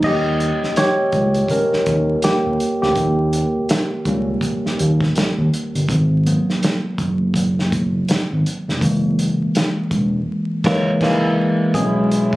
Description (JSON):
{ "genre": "R&B, neo-soul", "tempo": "82 BPM", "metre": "4/4", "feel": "swing 60% on 16ths", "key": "unclear", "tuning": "A4 = 439 Hz", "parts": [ { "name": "barky tine electric piano", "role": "accompaniment", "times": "0.0-12.4 s", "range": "E3 to D#5", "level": "-18 LUFS", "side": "equal", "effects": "overdrive" }, { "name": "smooth synth bass", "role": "bass", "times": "0.0-12.3 s", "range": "E1 to D#2", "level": "-20 LUFS", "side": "equal", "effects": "none" }, { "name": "warm soul drum kit", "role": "drums", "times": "0.0-12.4 s", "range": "crash cymbal, hi-hat, kick drum, snare drum", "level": "-22 LUFS", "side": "right 1 dB", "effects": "none" }, { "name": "electric guitar through a small old amp", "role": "second line", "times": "10.7-11.3 s", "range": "E4 to C#5", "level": "-23 LUFS", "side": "right 2 dB", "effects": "plate reverb" }, { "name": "muted French horn section", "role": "sustained chords", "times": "11.7-12.4 s", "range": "C#3 to E4", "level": "-26 LUFS", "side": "right 2 dB", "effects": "stereo widening" } ], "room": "moderate studio reverb, RT60 0.7 s", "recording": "recorded on a phone in the room, club reverb, vinyl crackle, compression", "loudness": "-16 LUFS", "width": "side -18 dB against mid", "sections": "0.0-11.7 A section", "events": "tine electric piano solo 0.0-11.7; band accent 10.3-11.7", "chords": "0.0 D#7; 5.9 G#m9; 8.8 F#9; 11.7 E69", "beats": "| 0.03 0.76 1.49 2.23 | 2.96 3.69 4.42 5.15 | 5.88 6.62 7.35 8.08 | 8.81 9.54 10.27 11.01 | 11.74" }